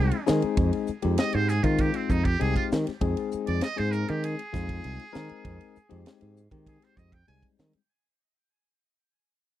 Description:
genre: electric jazz fusion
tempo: 99 BPM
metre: 4/4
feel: straight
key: F minor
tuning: A4 = 440 Hz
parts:
  - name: trumpet with metal mute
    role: melody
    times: 0.0-7.5 s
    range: C4 to Ab5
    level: -34 LUFS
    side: right 4 dB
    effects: none
  - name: barky tine electric piano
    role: accompaniment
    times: 0.0-7.8 s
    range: G3 to G5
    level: -31 LUFS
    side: left 10 dB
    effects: none
  - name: modern bright fingered electric bass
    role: bass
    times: 0.0-7.8 s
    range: C2 to Eb3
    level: -26 LUFS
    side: right 1 dB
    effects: none
  - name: crisp fusion drum kit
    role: drums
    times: 0.1-7.9 s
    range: hi-hat, kick drum, ride cymbal, snare drum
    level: -29 LUFS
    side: right 1 dB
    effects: none
room: little or no reverb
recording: dry, close 1970s-style studio recording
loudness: -24 LUFS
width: side -13 dB against mid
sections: 0.0-7.9 A section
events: fade-out 0.0-7.9; muted trumpet solo 0.0-7.9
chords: 0.0 Fm9

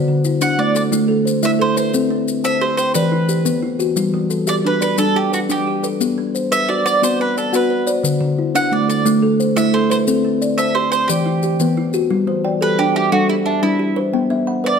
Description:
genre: southern african traditional, mbira-style interlocking cycle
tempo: 118 BPM (dotted quarters)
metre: 12/8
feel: straight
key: G major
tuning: A4 = 438 Hz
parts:
  - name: kalimba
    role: arpeggios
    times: 0.0-14.8 s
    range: D3 to G5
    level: -18 LUFS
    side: left 4 dB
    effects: none
  - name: kalimba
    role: arpeggios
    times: 0.0-14.8 s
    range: D3 to B5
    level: -21 LUFS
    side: right 5 dB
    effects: none
  - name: maracas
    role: percussion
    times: 0.2-12.1 s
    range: none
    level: -27 LUFS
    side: left 6 dB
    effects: none
  - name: mandolin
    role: melody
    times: 0.4-14.8 s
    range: D4 to F#5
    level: -19 LUFS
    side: right 4 dB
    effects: none
room: moderate recital hall reverb, RT60 1.4 s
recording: none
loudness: -15 LUFS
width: side -6 dB against mid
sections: 0.0-12.1 A section; 12.1-14.8 B section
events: none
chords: 0.0 D5; 0.9 Am; 1.9 C5; 3.0 Em; 4.0 G; 6.0 Bm; 8.0 D5; 9.1 Am; 10.1 C5; 11.1 Em; 12.1 G5; 14.1 B5

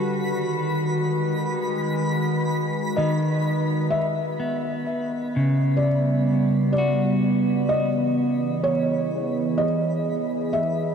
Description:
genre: ambient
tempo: 63 BPM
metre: 4/4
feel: straight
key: unclear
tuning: A4 = 436 Hz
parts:
  - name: warbly tape-like pad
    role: sustained chords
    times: 0.0-10.9 s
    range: D3 to B4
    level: -24 LUFS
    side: right 1 dB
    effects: chorus, built-in reverb
  - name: clean electric guitar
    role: arpeggios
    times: 0.0-10.9 s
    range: C#3 to A4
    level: -25 LUFS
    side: equal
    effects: diffuse ambient delay
  - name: twinkling granular texture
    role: texture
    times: 0.0-10.9 s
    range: B5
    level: -35 LUFS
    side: equal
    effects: built-in reverb
  - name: felt-muted upright piano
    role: melody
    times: 3.0-10.9 s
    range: C#5 to E5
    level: -26 LUFS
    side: equal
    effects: diffuse ambient delay
room: wet huge ambient reverb, RT60 7.7 s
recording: dark, warm production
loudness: -21 LUFS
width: side -7 dB against mid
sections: 0.0-3.9 A section; 3.9-10.9 B section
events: filter sweep on ambient pad 3.9-10.9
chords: 0.1 G#m7; 3.9 G; 7.7 Emaj7

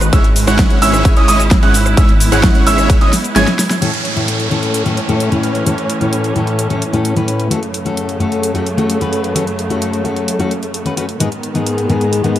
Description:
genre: EDM, festival progressive house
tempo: 130 BPM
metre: 4/4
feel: straight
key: unclear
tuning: A4 = 440 Hz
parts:
  - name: rich symphonic string section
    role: sustained chords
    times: 0.0-12.4 s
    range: F#2 to E4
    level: -20 LUFS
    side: right 2 dB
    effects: sidechain pumping, low-pass filter
  - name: wide detuned saw bass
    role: bass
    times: 0.0-3.5 s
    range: G#1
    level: -16 LUFS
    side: equal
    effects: chorus, sidechain pumping
  - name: big-room dance drum kit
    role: drums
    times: 0.0-12.4 s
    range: hi-hat, rim click, shaker, snare drum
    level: -20 LUFS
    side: equal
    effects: overdrive
  - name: dark concert grand piano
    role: arpeggios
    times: 0.1-3.5 s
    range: D#6 to G#6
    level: -19 LUFS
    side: right 4 dB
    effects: sidechain pumping, dub echo
  - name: dense compressed supersaw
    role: riff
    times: 0.1-3.5 s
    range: G#3 to G#5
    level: -18 LUFS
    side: equal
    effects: sidechain pumping, low-pass filter, dub echo
  - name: electronic kick drum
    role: drums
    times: 0.1-3.0 s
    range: none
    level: -11 LUFS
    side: equal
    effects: overdrive
  - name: fingerpicked steel-string acoustic guitar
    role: accompaniment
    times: 3.8-12.4 s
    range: G#2 to B4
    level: -16 LUFS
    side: left 3 dB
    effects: sidechain pumping, dub echo
  - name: downlifter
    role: sound effects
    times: 3.8-7.5 s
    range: none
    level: -25 LUFS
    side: right 2 dB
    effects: none
room: light reverb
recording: none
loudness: -12 LUFS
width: side -12 dB against mid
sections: 0.0-3.8 A section; 3.8-12.4 B section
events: drop 0.0-3.8; drum fill 3.1-3.8; kick drops out 3.4-3.8; band accent 3.7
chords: 0.1 C#m/G#; 3.8 A; 7.5 F#m; 11.2 G#m

